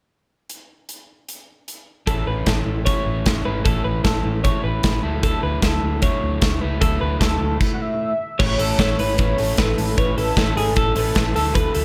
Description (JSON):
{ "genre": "jangly indie pop", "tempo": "152 BPM", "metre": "4/4", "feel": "straight", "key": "A major", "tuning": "A4 = 440 Hz", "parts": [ { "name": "big rock drum kit", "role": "drums", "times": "0.5-11.8 s", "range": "crash cymbal, hi-hat, kick drum, snare drum", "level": "-24 LUFS", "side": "equal", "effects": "none" }, { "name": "overdriven electric guitar", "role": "accompaniment", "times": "2.1-11.8 s", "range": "A2 to E4", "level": "-28 LUFS", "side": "equal", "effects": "none" }, { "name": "twelve-string electric guitar", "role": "arpeggios", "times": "2.1-11.8 s", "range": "G#4 to C#5", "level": "-28 LUFS", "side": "equal", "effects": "analog delay" }, { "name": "vintage muted fingered electric bass", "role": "bass", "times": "2.1-11.8 s", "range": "G#1 to D2", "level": "-27 LUFS", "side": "equal", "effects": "none" }, { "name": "warm velvety synth lead", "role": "melody", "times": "7.7-11.8 s", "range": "A4 to F#5", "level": "-26 LUFS", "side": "equal", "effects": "chorus" } ], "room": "light reverb", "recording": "none", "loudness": "-20 LUFS", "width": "mono", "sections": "0.5-2.1 A section; 2.1-8.4 B section; 8.4-11.8 C section", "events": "stop 7.6-8.4", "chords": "0.5 N.C.; 2.1 A; 5.0 Dadd9; 8.4 A" }